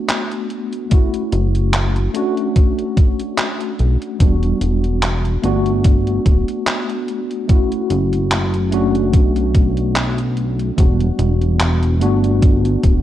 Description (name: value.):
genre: vaporwave.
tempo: 73 BPM.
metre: 4/4.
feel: swing 55% on 16ths.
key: B minor.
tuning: A4 = 440 Hz.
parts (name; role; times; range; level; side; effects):
mellow tine electric piano; accompaniment; 0.0-13.0 s; G3 to F#4; -20 LUFS; left 1 dB; medium stereo tremolo, lush chorus, analog delay.
detuned 8-bit digital drum machine; drums; 0.1-13.0 s; handclaps, hi-hat; -22 LUFS; equal; gated reverb.
electronic kick drum; drums; 0.9-13.0 s; none; -13 LUFS; equal; none.
chorused synth bass; bass; 1.3-13.0 s; D1 to B1; -17 LUFS; equal; tube saturation.
room: light reverb, digital ambience.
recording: cassette tape.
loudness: -14 LUFS.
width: side -12 dB against mid.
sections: 0.0-13.0 A section.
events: none.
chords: 0.0 Gmaj9 (rootless); 0.9 F#m7; 2.1 Bm7 (rootless); 4.2 Em7; 5.4 Gmaj9; 7.5 F#m7; 8.7 Bm7; 10.8 Em7; 12.0 Gmaj9.